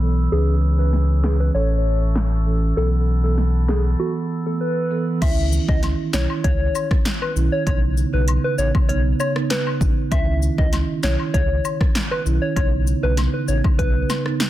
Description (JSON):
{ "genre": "dancehall", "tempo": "98 BPM", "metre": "4/4", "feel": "straight", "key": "C# minor", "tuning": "A4 = 440 Hz", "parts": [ { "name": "marimba with soft mallets", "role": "accompaniment", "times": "0.0-14.4 s", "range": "C#3 to B4", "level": "-24 LUFS", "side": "right 4 dB", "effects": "none" }, { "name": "mellow small flute group", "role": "sustained chords", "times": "0.0-5.2 s", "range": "G#4 to E6", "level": "-35 LUFS", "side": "equal", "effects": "sidechain pumping" }, { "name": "sub bass with octave", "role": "bass", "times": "0.0-14.0 s", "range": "A1 to C#2", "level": "-19 LUFS", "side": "equal", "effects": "none" }, { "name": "soft struck synth lead", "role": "melody", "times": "0.3-14.2 s", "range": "F#4 to E5", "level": "-26 LUFS", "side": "left 2 dB", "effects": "chorus, ping-pong delay" }, { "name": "deep house drum kit", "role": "drums", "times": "0.9-14.5 s", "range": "crash cymbal, handclaps, hi-hat, kick drum, rim click, snare drum", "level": "-21 LUFS", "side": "equal", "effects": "none" }, { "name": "woodblock and cabasa", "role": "percussion", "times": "5.2-14.2 s", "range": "none", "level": "-33 LUFS", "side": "left 6 dB", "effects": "none" } ], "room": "little or no reverb", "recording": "dense, heavily limited modern master, low-pass filter", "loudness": "-17 LUFS", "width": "side -14 dB against mid", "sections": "0.0-5.2 A section; 5.2-14.5 B section", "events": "filter sweep 0.0-5.2; break 4.0-5.2", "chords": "0.3 C#m7; 1.5 A; 2.8 B7sus4; 5.2 C#madd9; 7.7 Badd9; 10.1 C#madd9; 12.6 Badd9", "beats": "| 0.32 0.93 1.54 2.16 | 2.77 3.38 3.99 4.61 | 5.22 5.83 6.44 7.05 | 7.67 8.28 8.89 9.50 | 10.12 10.73 11.34 11.95 | 12.56 13.18 13.79 14.40" }